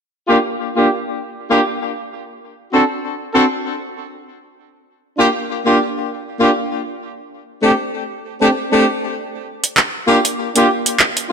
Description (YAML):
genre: glitch hop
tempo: 98 BPM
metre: 4/4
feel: swing 56% on 16ths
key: G minor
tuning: A4 = 440 Hz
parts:
  - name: warm horn section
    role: stabs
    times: 0.3-11.3 s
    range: A3 to A4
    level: -16 LUFS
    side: equal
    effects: low-pass filter, ping-pong delay
  - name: dubstep drum kit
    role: drums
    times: 9.6-11.3 s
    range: handclaps, hi-hat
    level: -14 LUFS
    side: right 1 dB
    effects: none
room: moderate lush hall reverb, RT60 2.2 s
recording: none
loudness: -14 LUFS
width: side -6 dB against mid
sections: 0.0-11.3 A section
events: none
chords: 0.0 Gm7; 1.8 D7; 4.3 Bb6; 6.7 Amadd11; 9.2 Gm7